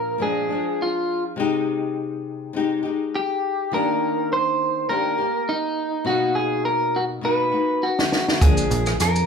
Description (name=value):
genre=indie pop, bedroom pop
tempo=102 BPM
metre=4/4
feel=swing 55% on 16ths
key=Eb major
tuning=A4 = 440 Hz
part: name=electric guitar through a small old amp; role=melody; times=0.0-9.3 s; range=Eb4 to C5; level=-22 LUFS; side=right 1 dB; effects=none
part: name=flamenco guitar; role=accompaniment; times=0.0-9.3 s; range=Bb2 to G4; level=-25 LUFS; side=left 4 dB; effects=vibrato effect
part: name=compact cocktail drum kit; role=drums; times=8.0-9.3 s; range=hi-hat, kick drum, rim click, shaker, snare drum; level=-19 LUFS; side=equal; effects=none
part: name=plucky analog bass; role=bass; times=8.4-9.2 s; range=Bb1 to F2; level=-22 LUFS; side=right 1 dB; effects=none
room=moderate large studio reverb, RT60 0.9 s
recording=band playing live in one room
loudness=-20 LUFS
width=side -6 dB against mid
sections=0.0-9.3 A section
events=drum fill 7.2-8.4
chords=0.0 Bb7; 1.4 Abmaj7/C; 3.7 Ebmaj7; 6.1 Bmaj7; 8.4 Bb7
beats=0.20 0.79 | 1.38 1.97 2.55 3.14 | 3.72 4.31 4.90 5.48 | 6.07 6.66 7.24 7.83 | 8.41 9.00